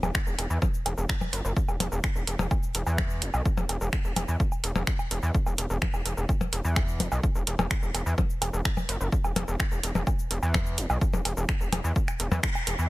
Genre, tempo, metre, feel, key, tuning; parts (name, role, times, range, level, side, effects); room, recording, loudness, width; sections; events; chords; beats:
melodic techno; 127 BPM; 4/4; straight; A4 = 441 Hz
gritty driven synth bass; bass; 0.0-12.9 s; E1 to E2; -28 LUFS; equal; sidechain pumping
techno drum kit; drums; 0.0-12.9 s; finger snaps, hi-hat, percussion blips, shaker, woodblock; -30 LUFS; left 1 dB; soft clipping on snare
electronic kick drum; drums; 0.1-12.5 s; -27 LUFS; equal
digital ambience; dense, heavily limited modern master; -25 LUFS; side -19 dB against mid
0.0-12.9 A section
drop 0.0-12.9; band accent 12.4
0.15 0.62 1.09 | 1.57 2.04 2.51 2.98 | 3.46 3.93 4.40 4.87 | 5.35 5.82 6.29 6.76 | 7.24 7.71 8.18 8.65 | 9.13 9.60 10.07 10.54 | 11.02 11.49 11.96 12.43